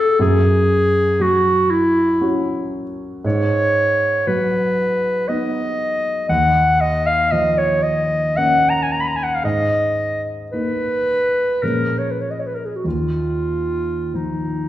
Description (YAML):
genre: classical, impressionist duo for clarinet and grand piano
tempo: 46-61 BPM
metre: 3/4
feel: rubato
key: Eb minor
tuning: A4 = 441 Hz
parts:
  - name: clear clarinet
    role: melody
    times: 0.0-14.7 s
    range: Eb4 to Cb6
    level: -17 LUFS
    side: equal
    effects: none
  - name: dark concert grand piano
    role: accompaniment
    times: 0.0-14.7 s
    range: Eb2 to F#4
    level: -21 LUFS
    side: equal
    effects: none
room: wet recital hall reverb, RT60 1.3 s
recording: heard from further back in the room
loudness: -16 LUFS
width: side -13 dB against mid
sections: 0.0-14.7 A section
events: none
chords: 0.2 Gb5; 3.2 Abm7; 6.3 Ebsus2; 9.4 Abmadd9; 11.6 Bbm7; 12.8 Ebsus2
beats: | 0.19 1.19 2.20 | 3.24 4.26 5.28 | 6.29 7.32 8.37 | 9.43 10.52 11.62 | 12.84 14.14